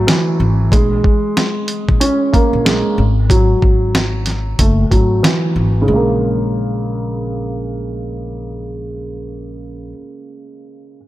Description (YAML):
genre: hip hop, boom-bap hip-hop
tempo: 93 BPM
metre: 4/4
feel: swing 61% on 16ths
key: unclear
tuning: A4 = 441 Hz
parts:
  - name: dark upright piano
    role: accompaniment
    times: 0.0-11.0 s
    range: Db3 to Db4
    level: -18 LUFS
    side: right 1 dB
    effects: cassette tape, high-pass filter, low-pass filter
  - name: upright bass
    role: bass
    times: 0.0-9.9 s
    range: Gb1 to Bb1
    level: -18 LUFS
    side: equal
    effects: none
  - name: dusty soul sampler-style drum kit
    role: drums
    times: 0.1-5.4 s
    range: hi-hat, kick drum, snare drum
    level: -15 LUFS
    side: equal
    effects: overdrive
room: light reverb, studio reverb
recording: none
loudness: -13 LUFS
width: side -15 dB against mid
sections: 0.0-5.9 A section; 5.9-8.5 B section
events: filter sweep on upright piano 0.0-5.9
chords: 0.0 Gbm7; 0.7 Bbm7; 3.0 Gbsus2/Ab; 4.6 Gbm7; 5.9 Bbm7